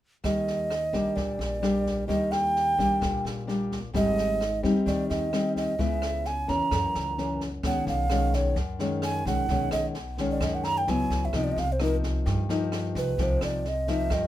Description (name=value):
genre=bossa nova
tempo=130 BPM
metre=4/4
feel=straight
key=unclear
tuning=A4 = 445 Hz
part: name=breathy alto ocarina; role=melody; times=0.2-14.3 s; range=Bb4 to Bb5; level=-28 LUFS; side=right 2 dB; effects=none
part: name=nylon-string guitar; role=accompaniment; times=0.2-14.3 s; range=Gb2 to Fb4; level=-28 LUFS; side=left 2 dB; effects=none
part: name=upright bass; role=bass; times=0.2-14.3 s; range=Ab1 to G2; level=-31 LUFS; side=equal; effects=none
part: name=open jazz drum kit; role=drums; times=0.2-14.2 s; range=kick drum, rim click, snare drum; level=-35 LUFS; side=equal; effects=none
room=light reverb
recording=minimal, uncompressed stereo recording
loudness=-24 LUFS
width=side -13 dB against mid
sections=0.2-7.6 A section; 7.6-14.3 B section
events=ocarina solo 7.6-14.3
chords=0.2 Ebmaj7; 3.9 Abmaj7; 5.8 Dbm7; 6.7 Gb7; 7.6 B69; 10.9 Dbm7; 11.3 Cm7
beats=| 0.24 0.71 1.17 1.63 | 2.09 2.56 3.02 3.48 | 3.94 4.41 4.87 5.33 | 5.79 6.26 6.72 7.18 | 7.64 8.11 8.57 9.03 | 9.49 9.95 10.41 10.88 | 11.34 11.80 12.26 12.72 | 13.19 13.65 14.11